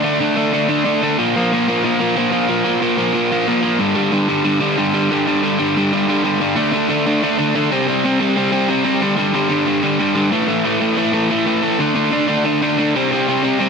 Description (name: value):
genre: punk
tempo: 184 BPM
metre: 4/4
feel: straight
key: unclear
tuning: A4 = 444 Hz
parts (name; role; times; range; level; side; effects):
- overdriven electric guitar; solo; 0.0-13.7 s; G2 to D4; -14 LUFS; equal; digital delay
room: light reverb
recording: dense, heavily limited modern master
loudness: -14 LUFS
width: side -5 dB against mid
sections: 0.0-6.6 A section; 6.6-13.7 B section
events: none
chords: 0.0 D5; 1.2 Bb5; 3.8 G5; 6.6 D5; 7.7 C5; 9.0 G5; 10.3 A5; 11.8 D5; 12.9 C5